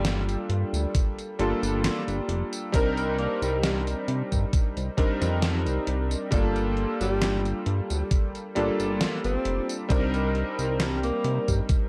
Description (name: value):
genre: vaporwave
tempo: 67 BPM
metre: 4/4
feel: swing 53% on 16ths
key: G minor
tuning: A4 = 440 Hz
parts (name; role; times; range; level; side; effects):
- breathy tenor saxophone; melody; 0.0-11.6 s; G3 to C4; -36 LUFS; equal; tape echo
- clear electric grand piano; accompaniment; 0.0-11.9 s; G3 to Bb4; -30 LUFS; equal; lush chorus, analog delay
- chorused synth bass; bass; 0.0-11.6 s; F1 to C3; -30 LUFS; equal; none
- gated 80s digital drum machine; drums; 0.0-11.9 s; hi-hat, snare drum, tambourine; -34 LUFS; equal; gated reverb, gated reverb snare
- electronic kick drum; drums; 0.9-11.9 s; none; -26 LUFS; equal; none
room: little or no reverb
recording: dry, gritty hardware recording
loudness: -26 LUFS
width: mono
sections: 0.0-11.9 A section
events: none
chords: 0.0 Gm9; 2.7 Cm9; 6.3 Gm9; 9.9 Cm9